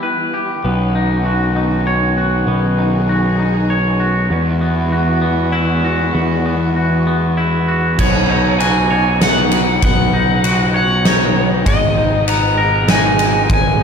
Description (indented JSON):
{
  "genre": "post-rock",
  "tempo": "98 BPM",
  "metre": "3/4",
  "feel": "straight",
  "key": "B major",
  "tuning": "A4 = 440 Hz",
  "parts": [
    { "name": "dark studio string section", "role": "sustained chords", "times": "0.0-13.8 s", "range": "B2 to G#4", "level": "-25 LUFS", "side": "right 1 dB", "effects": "none" },
    { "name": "twangy electric guitar", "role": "arpeggios", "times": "0.0-13.8 s", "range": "E2 to C#5", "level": "-19 LUFS", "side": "left 1 dB", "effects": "slapback echo, digital delay" },
    { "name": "fuzz picked electric bass", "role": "bass", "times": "0.6-13.8 s", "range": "G#1 to E2", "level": "-17 LUFS", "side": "equal", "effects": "overdrive" },
    { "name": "overdriven slide guitar", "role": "melody", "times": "8.0-13.8 s", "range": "C#5 to A#5", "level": "-18 LUFS", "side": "equal", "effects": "slapback echo, digital delay" },
    { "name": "huge arena drum kit", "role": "drums", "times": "8.0-13.6 s", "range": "crash cymbal, kick drum, ride cymbal, snare drum", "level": "-16 LUFS", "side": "equal", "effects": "none" }
  ],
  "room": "moderate scoring stage reverb, RT60 1.9 s, small room ambience",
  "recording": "big arena sound",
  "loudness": "-13 LUFS",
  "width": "side -6 dB against mid",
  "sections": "0.0-8.0 A section; 8.0-13.8 B section",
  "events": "none",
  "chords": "0.0 Em; 0.6 Badd9; 4.3 Eadd9; 8.0 Badd9; 11.7 G#madd9"
}